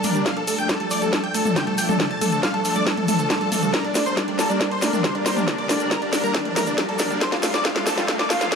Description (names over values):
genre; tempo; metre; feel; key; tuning
uplifting trance; 138 BPM; 4/4; straight; G minor; A4 = 440 Hz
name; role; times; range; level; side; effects
big supersaw lead; melody; 0.0-8.6 s; D4 to A5; -26 LUFS; left 1 dB; cassette tape, sidechain pumping, tape echo
plucky unison lead; second line; 0.0-8.6 s; D5 to A6; -29 LUFS; equal; lush chorus, sidechain pumping, tape echo
lush unison pad; sustained chords; 0.0-8.6 s; F3 to Bb4; -27 LUFS; equal; chorus, sidechain pumping
analog pluck; arpeggios; 0.0-8.6 s; G3 to A3; -29 LUFS; right 5 dB; chorus, sidechain pumping, tape echo
house drum kit; drums; 0.0-8.6 s; hi-hat, snare drum, toms; -23 LUFS; left 1 dB; none
egg shaker; percussion; 0.0-8.6 s; none; -34 LUFS; right 1 dB; none
electronic kick drum; drums; 0.3-8.6 s; none; -32 LUFS; left 1 dB; none
riser; sound effects; 5.6-8.6 s; none; -34 LUFS; equal; none
room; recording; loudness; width
light reverb; dark, warm production, high-pass filter; -19 LUFS; side -6 dB against mid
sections
0.0-8.6 A section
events
build-up 0.0-8.6; drum fill 0.0-8.6; filter sweep on synth pluck 0.0-8.6; riser 5.6-8.6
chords
0.3 Dm; 3.7 Gm; 7.2 F